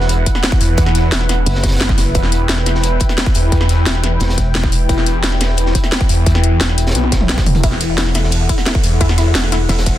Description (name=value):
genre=dark technical drum and bass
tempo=175 BPM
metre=4/4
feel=straight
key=E minor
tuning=A4 = 440 Hz
part: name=dark analog pad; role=sustained chords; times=0.0-10.0 s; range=E4 to G5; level=-22 LUFS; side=left 1 dB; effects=chorus, sidechain pumping
part: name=phased detuned saw bass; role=bass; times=0.0-9.7 s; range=E1 to E2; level=-16 LUFS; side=equal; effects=phaser, overdrive
part: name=crunchy breakbeat drum kit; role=drums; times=0.0-9.9 s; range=hi-hat, snare drum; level=-27 LUFS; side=right 1 dB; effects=high-pass filter on hats, high-pass filter on snare, high-pass filter on room
part: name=drum and bass drum kit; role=drums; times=0.1-9.9 s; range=hi-hat, ride cymbal, snare drum, toms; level=-19 LUFS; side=equal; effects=none
part: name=electronic kick drum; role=drums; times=0.3-9.9 s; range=none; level=-16 LUFS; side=equal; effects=overdrive
part: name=pulsing pluck wobble bass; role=bass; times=1.5-2.1, 4.2-4.9, 9.7-10.0 s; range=E1 to F#1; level=-17 LUFS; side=equal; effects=chorus
part: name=analog pluck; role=arpeggios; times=7.6-9.8 s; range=E4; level=-24 LUFS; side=left 5 dB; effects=chorus, sidechain pumping, ping-pong delay
room=little or no reverb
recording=dense, heavily limited modern master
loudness=-12 LUFS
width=side -13 dB against mid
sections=0.0-10.0 A section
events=drum fill 7.0-7.6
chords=0.0 E5